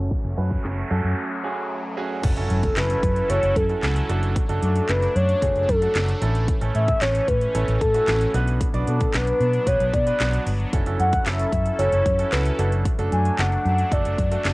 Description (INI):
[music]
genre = dance-pop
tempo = 113 BPM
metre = 4/4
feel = straight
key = F# minor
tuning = A4 = 438 Hz
[part]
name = clear baby grand piano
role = accompaniment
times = 0.0-14.5 s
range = A3 to D5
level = -30 LUFS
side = right 4 dB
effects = sidechain pumping
[part]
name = sweeping resonant pad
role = sustained chords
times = 0.0-14.5 s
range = E3 to A4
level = -31 LUFS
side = equal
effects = chorus, sidechain pumping
[part]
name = vintage muted fingered electric bass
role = bass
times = 0.0-14.5 s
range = F#1 to B2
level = -23 LUFS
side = equal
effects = sidechain pumping
[part]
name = noise sweep and impact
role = sound effects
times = 0.7-4.4 s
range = none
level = -33 LUFS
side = equal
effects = none
[part]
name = house drum kit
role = drums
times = 0.1-14.5 s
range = crash cymbal, handclaps, hi-hat, kick drum, snare drum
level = -25 LUFS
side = equal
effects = none
[part]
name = mellow horn-like synth lead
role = melody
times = 2.5-14.5 s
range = A4 to G#5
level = -23 LUFS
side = equal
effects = chorus, cassette tape
[sound]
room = little or no reverb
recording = home recording on cassette, low-pass filter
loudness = -19 LUFS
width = side -21 dB against mid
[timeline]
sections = 0.0-2.2 A section; 2.2-14.5 B section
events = filter sweep 0.0-2.2; noise sweep 0.7-2.2; break 1.2-2.2; impact 2.2-4.4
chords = 0.0 F#m; 2.2 F#m7; 4.1 D/F#; 6.2 A; 8.3 Bm; 10.7 F#m7; 12.6 D/F#